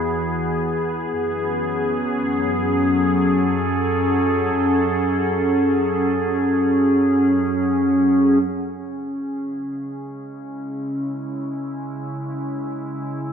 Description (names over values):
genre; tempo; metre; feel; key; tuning
ambient; free time; none; none; F# minor; A4 = 439 Hz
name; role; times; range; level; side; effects
evolving wavetable pad; sustained chords; 0.0-13.3 s; C#3 to A4; -19 LUFS; equal; chorus, built-in reverb
warm chamber cello section; bass; 0.0-8.4 s; E2 to F#2; -30 LUFS; equal; none
room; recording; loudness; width
wet concert hall reverb, RT60 1.9 s, studio reverb; none; -18 LUFS; side -7 dB against mid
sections
0.0-8.4 A section; 8.4-13.3 B section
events
none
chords
0.0 E; 1.2 F#madd9; 8.4 C#m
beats
free time